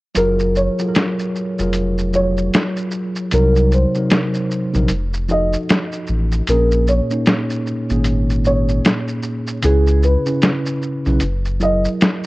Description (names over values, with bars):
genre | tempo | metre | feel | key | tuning
lo-fi hip hop | 76 BPM | 4/4 | swing 61% on 16ths | F# major | A4 = 440 Hz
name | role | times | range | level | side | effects
felt-muted upright piano | melody | 0.2-11.8 s | G#4 to Eb5 | -21 LUFS | right 1 dB | none
mellow tine electric piano | accompaniment | 0.2-12.3 s | A#2 to C#5 | -20 LUFS | equal | medium stereo tremolo
saturated sub bass | bass | 0.2-11.9 s | E#1 to C#2 | -17 LUFS | equal | tube saturation
lo-fi sampler-style drum kit | drums | 0.2-12.3 s | hi-hat, shaker, snare drum | -18 LUFS | equal | none
room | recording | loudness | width
light reverb | worn, warbling old tape, cassette tape, warbly pitch drift | -15 LUFS | side -20 dB against mid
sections
0.2-12.3 A section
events
kick muted 0.2-12.3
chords
0.2 F#maj9; 3.3 Cm7b5; 4.9 F7b9; 6.5 A#m7; 9.6 C#m7; 11.2 F#9